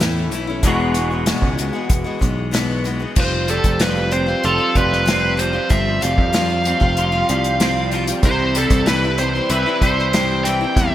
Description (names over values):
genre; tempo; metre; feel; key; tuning
folk rock and heartland rock; 95 BPM; 4/4; straight; unclear; A4 = 439 Hz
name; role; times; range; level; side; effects
picked steel-string acoustic guitar; accompaniment; 0.0-10.9 s; E2 to F#4; -24 LUFS; left 4 dB; none
electric guitar through a small old amp; riff; 0.0-10.9 s; E2 to F#4; -23 LUFS; right 1 dB; ensemble chorus
picked electric bass; bass; 0.0-10.9 s; E1 to F2; -22 LUFS; equal; none
unplugged drum kit; drums; 0.0-10.9 s; crash cymbal, hi-hat, kick drum, snare drum; -20 LUFS; equal; none
bluesy overdriven lead guitar; melody; 3.2-10.9 s; A4 to G5; -20 LUFS; equal; distortion, digital delay
mellow tonewheel organ; sustained chords; 3.2-10.9 s; F3 to G4; -32 LUFS; right 1 dB; none
room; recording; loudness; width
light reverb, small room ambience; bright 1980s-style digital production; -15 LUFS; side -12 dB against mid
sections
0.0-3.2 A section; 3.2-10.9 B section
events
none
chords
0.0 A; 0.6 Eadd9; 3.2 Fsus2; 8.2 C